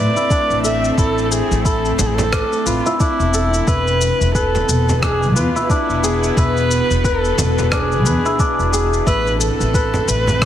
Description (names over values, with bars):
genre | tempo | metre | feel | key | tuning
organic downtempo | 89 BPM | 4/4 | swing 59% on 16ths | unclear | A4 = 439 Hz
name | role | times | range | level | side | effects
warm kamancheh | melody | 0.0-10.5 s | E4 to E5 | -20 LUFS | equal | ping-pong delay
bowed-like drone | sustained chords | 0.0-10.5 s | B2 to E5 | -24 LUFS | left 1 dB | built-in reverb, sidechain pumping
kora | arpeggios | 0.0-10.5 s | D4 to B4 | -22 LUFS | left 1 dB | low-pass filter, ping-pong delay
upright bass | bass | 0.0-10.5 s | E1 to E2 | -19 LUFS | equal | sidechain pumping
electronic shaker and rim click | drums | 0.2-10.5 s | none | -25 LUFS | left 2 dB | none
electronic kick drum | drums | 0.3-10.5 s | none | -18 LUFS | equal | none
frame drum | percussion | 2.0-10.4 s | none | -23 LUFS | right 1 dB | none
room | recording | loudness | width
moderate concert hall reverb, RT60 2.1 s | heavily compressed radio sound, multiband compression | -14 LUFS | side -11 dB against mid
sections
0.0-10.5 A section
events
filter sweep on kora 0.0-10.5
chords
0.0 Am; 3.7 E; 9.1 Am